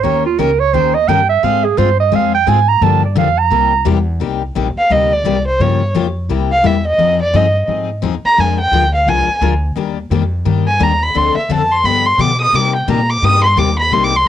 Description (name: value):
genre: acoustic string swing (jazz manouche)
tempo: 173 BPM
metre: 4/4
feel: swing 60% on 8ths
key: C minor from 4.2 s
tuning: A4 = 440 Hz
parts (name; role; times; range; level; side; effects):
- clear clarinet; second line; 0.0-3.9 s; F4 to Bb5; -13 LUFS; right 9 dB; none
- picked steel-string acoustic guitar; accompaniment; 0.0-14.1 s; C3 to Bb4; -18 LUFS; left 9 dB; none
- upright bass; bass; 0.0-14.3 s; Bb1 to C3; -17 LUFS; equal; none
- dark violin; melody; 4.8-14.3 s; C5 to Eb6; -14 LUFS; equal; cassette tape
room: light reverb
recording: home recording on cassette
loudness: -11 LUFS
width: side -10 dB against mid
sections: 0.0-4.2 A section; 4.2-14.3 A section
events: clarinet solo 0.0-4.2; violin solo 4.2-14.3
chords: 0.0 Eb7; 1.4 Ab6; 2.8 Gm7; 3.5 C7; 4.2 Cm7; 5.6 Gm7b5; 6.3 C7; 7.0 Fm9; 8.4 Bb7; 9.8 Ebmaj9; 11.2 Dm7; 11.8 G7; 12.5 Cm7